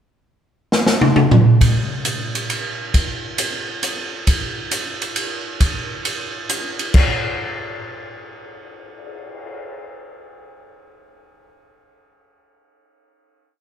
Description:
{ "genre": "jazz", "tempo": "135 BPM", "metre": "3/4", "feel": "swing 68% on 8ths", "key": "none", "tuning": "none", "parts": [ { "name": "swinging big-band drum kit", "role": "drums", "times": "0.7-9.5 s", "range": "crash cymbal, cymbal swell, hi-hat, kick drum, ride cymbal, snare drum, toms", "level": "-17 LUFS", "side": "equal", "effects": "none" } ], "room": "wet club reverb, RT60 0.6 s", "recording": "heard from further back in the room", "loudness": "-17 LUFS", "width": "side -9 dB against mid", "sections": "0.3-1.6 pickup bar; 1.6-6.9 A section; 6.9-9.6 final hit", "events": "drum fill 0.7-1.6", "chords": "none" }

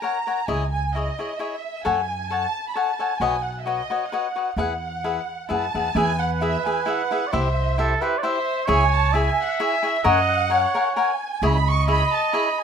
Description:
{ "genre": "mexican folk, mariachi", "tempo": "132 BPM", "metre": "3/4", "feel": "straight", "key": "E major", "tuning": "A4 = 440 Hz", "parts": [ { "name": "dark symphonic violin section", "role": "melody", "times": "0.0-12.6 s", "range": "D#5 to C#6", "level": "-26 LUFS", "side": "right 4 dB", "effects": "tape echo" }, { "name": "cavaquinho", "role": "accompaniment", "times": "0.0-12.5 s", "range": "E4 to G#5", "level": "-24 LUFS", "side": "left 5 dB", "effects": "none" }, { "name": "upright bass", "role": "bass", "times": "0.5-12.0 s", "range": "B1 to F#2", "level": "-24 LUFS", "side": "right 1 dB", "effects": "none" }, { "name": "mellow trumpet", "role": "second line", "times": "6.0-12.6 s", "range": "A4 to E5", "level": "-23 LUFS", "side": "right 3 dB", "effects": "none" } ], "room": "moderate studio reverb, RT60 0.6 s", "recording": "rough home demo mix", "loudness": "-20 LUFS", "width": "side -7 dB against mid", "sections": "0.0-6.0 A section; 6.0-12.6 A section", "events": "none", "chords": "0.5 C#madd9; 1.9 F#madd9; 3.2 Badd9; 4.6 Eadd9; 6.0 E; 7.3 C; 8.7 C#m; 10.0 F#add9; 11.4 C#madd9" }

